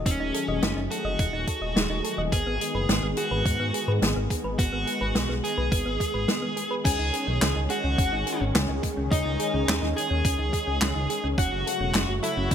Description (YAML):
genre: synthwave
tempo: 106 BPM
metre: 4/4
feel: straight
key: unclear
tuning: A4 = 440 Hz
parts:
  - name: warm analog pad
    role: sustained chords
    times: 0.0-12.5 s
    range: C#3 to G#4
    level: -33 LUFS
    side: equal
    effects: chorus, sidechain pumping
  - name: thumb-piano-like synth pluck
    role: arpeggios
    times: 0.0-12.5 s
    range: B3 to D#5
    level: -33 LUFS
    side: right 2 dB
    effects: chorus, ping-pong delay
  - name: dark detuned saw bass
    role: bass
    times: 0.0-12.5 s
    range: D#1 to G#2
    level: -29 LUFS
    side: equal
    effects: sidechain pumping
  - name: dark smooth lead guitar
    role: melody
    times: 0.1-12.5 s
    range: C#4 to G#4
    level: -30 LUFS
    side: equal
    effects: overdrive, ping-pong delay
  - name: electronic kick drum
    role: drums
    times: 0.1-12.5 s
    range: none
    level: -26 LUFS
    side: equal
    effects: none
  - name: swinging big-band drum kit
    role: drums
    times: 0.1-12.5 s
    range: crash cymbal, handclaps, hi-hat, snare drum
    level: -28 LUFS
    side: left 1 dB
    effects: none
  - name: FM electric piano with soft pad layer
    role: second line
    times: 6.8-12.5 s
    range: D#5 to G#5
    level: -34 LUFS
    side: left 3 dB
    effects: chorus, phaser
room: light reverb, small room ambience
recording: bright 1980s-style digital production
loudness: -23 LUFS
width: side -8 dB against mid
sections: 0.0-6.9 A section; 6.9-12.5 B section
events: none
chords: 0.0 D#dim; 2.3 G#m; 6.9 C#sus2; 11.4 F#m